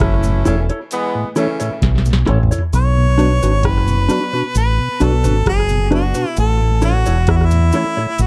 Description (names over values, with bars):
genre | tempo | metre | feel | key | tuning
roots reggae | 66 BPM | 4/4 | straight | unclear | A4 = 442 Hz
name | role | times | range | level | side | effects
clear horn section | second line | 0.0-1.7 s | C#3 to E4 | -24 LUFS | equal | tape echo
deep dub fingered electric bass | bass | 0.0-8.3 s | E1 to E2 | -17 LUFS | equal | none
booming analog drum machine | drums | 0.0-8.3 s | hi-hat, kick drum, rim click, snare drum, toms | -21 LUFS | equal | slapback echo
mellow tonewheel organ | accompaniment | 0.2-8.1 s | A2 to D4 | -25 LUFS | equal | slow rotary speaker, slapback echo
cabasa | percussion | 0.2-8.3 s | none | -35 LUFS | equal | none
mellow electric guitar | accompaniment | 0.5-8.1 s | D4 to C#5 | -23 LUFS | equal | warbly pitch drift, tape echo
clear harmonica | melody | 2.8-8.3 s | E4 to C#5 | -22 LUFS | equal | tape echo
room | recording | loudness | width
little or no reverb | dry, close 1970s-style studio recording | -16 LUFS | mono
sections
0.0-2.7 A section; 2.7-8.3 B section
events
drum fill 1.8-2.7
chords
0.0 A; 2.7 Bm; 6.4 A